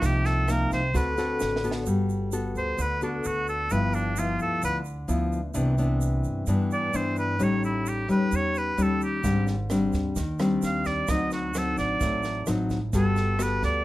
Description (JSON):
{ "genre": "bossa nova", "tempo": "130 BPM", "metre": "4/4", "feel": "straight", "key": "G major", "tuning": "A4 = 436 Hz", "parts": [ { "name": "bright oboe", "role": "melody", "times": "0.0-13.8 s", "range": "D4 to F5", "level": "-28 LUFS", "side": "right 1 dB", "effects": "none" }, { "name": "nylon-string guitar", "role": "accompaniment", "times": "0.0-13.8 s", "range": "G2 to A4", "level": "-26 LUFS", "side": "left 2 dB", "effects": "none" }, { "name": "upright bass", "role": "bass", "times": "0.0-13.8 s", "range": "G1 to G2", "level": "-29 LUFS", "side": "right 1 dB", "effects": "none" }, { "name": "compact cocktail drum kit", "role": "drums", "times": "0.0-1.8, 9.2-13.7 s", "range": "kick drum, rim click, snare drum", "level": "-34 LUFS", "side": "right 1 dB", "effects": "none" }, { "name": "tube shaker", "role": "percussion", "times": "0.0-13.8 s", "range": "none", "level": "-43 LUFS", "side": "right 8 dB", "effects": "none" } ], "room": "little or no reverb", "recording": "close, detailed microphones", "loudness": "-23 LUFS", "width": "side -16 dB against mid", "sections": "0.0-1.9 A section; 1.9-13.8 A section", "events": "oboe solo 0.0-1.9, 1.9-13.8; drum fill 1.4-1.9", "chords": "0.0 Cm7; 0.9 D7; 1.9 Gmaj9; 3.7 G6; 5.6 Cmaj9; 7.4 A7#11; 9.2 Abmaj7#11; 11.1 D7b9; 12.9 Gmaj9" }